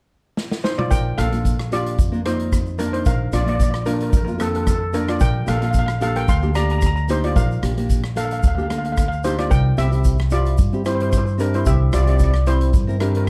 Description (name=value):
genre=calypso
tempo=112 BPM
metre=4/4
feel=swing 53% on 16ths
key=Bb major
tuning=A4 = 440 Hz
part: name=street-band drum kit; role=drums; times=0.4-13.3 s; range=hi-hat, kick drum, rim click, snare drum, toms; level=-24 LUFS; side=equal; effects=none
part: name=steel pan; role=melody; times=0.6-13.3 s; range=C4 to C6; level=-26 LUFS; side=equal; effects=plate reverb
part: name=upright bass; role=bass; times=0.9-13.3 s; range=Bb1 to G2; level=-23 LUFS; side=equal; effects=none
part: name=tube shaker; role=percussion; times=0.9-12.9 s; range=none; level=-44 LUFS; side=equal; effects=none
part: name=nylon-string guitar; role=accompaniment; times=1.2-13.3 s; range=Bb3 to D5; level=-29 LUFS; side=equal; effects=none
room=light reverb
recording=dark, warm production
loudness=-19 LUFS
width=mono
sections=0.9-13.3 A section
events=drum fill 0.4-0.9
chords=0.0 N.C.; 0.9 Bb; 5.2 Gm7/Bb; 9.5 C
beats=0.37 | 0.91 1.45 1.98 2.52 | 3.06 3.60 4.13 4.67 | 5.21 5.75 6.29 6.82 | 7.36 7.90 8.44 8.98 | 9.51 10.05 10.59 11.13 | 11.66 12.20 12.74 13.28